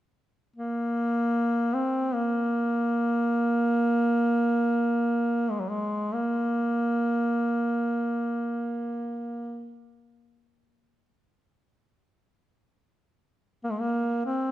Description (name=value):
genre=caucasian folk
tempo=free time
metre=none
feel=none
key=unclear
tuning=A4 = 443 Hz
part: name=warm duduk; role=melody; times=0.6-14.5 s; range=Gb3 to C4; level=-24 LUFS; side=equal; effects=none
room=moderate concert hall reverb, RT60 1.9 s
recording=minimal, uncompressed stereo recording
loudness=-24 LUFS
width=side -14 dB against mid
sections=0.0-14.5 A section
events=none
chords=none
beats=free time